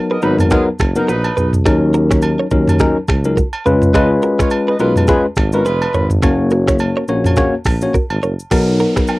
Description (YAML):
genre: afrobeats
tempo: 105 BPM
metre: 4/4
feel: swing 58% on 16ths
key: unclear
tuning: A4 = 437 Hz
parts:
  - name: tine electric piano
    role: accompaniment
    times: 0.0-9.2 s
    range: F#3 to Db5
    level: -15 LUFS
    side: left 2 dB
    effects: cassette tape
  - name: mellow horn section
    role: second line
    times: 0.1-6.1 s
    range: F3 to Eb5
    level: -21 LUFS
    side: right 2 dB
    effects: cassette tape
  - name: direct-recorded clean electric guitar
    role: riff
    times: 0.1-9.0 s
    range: Db4 to Db5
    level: -22 LUFS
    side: right 3 dB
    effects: cassette tape
  - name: mellow tuba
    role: bass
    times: 0.2-8.8 s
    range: F1 to Eb2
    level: -18 LUFS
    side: equal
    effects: none
  - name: afro-pop drum kit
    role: drums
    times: 0.2-9.2 s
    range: crash cymbal, finger snaps, hi-hat, kick drum, rim click, shaker, toms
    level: -16 LUFS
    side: equal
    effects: cassette tape
  - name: agogo bells and woodblock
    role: percussion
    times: 0.4-9.2 s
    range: none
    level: -28 LUFS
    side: right 3 dB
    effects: none
  - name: downlifter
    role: sound effects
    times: 8.5-9.2 s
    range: none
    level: -29 LUFS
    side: right 3 dB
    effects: none
room: little or no reverb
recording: home recording on cassette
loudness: -12 LUFS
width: side -20 dB against mid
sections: 0.0-8.5 A section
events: none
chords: 0.0 Bmaj7; 1.7 Ebm7; 3.7 Db7; 6.2 Gb; 8.5 Bmaj7